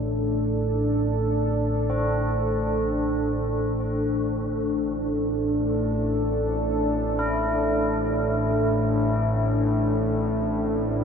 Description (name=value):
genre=dark ambient drone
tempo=free time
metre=none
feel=none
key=A minor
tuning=A4 = 440 Hz
part: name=deep dark ambient pad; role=sustained chords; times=0.0-11.0 s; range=D4 to C5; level=-25 LUFS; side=equal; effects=chorus, built-in reverb
part: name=analog drone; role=drone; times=0.0-11.0 s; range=A1 to A2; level=-26 LUFS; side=equal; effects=chorus
part: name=tubular bells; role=arpeggios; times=1.9-11.0 s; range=C4 to E4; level=-31 LUFS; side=left 2 dB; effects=ping-pong delay
room=wet huge ambient reverb, RT60 8.9 s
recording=none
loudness=-22 LUFS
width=side -6 dB against mid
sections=0.0-11.0 A section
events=none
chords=0.0 Am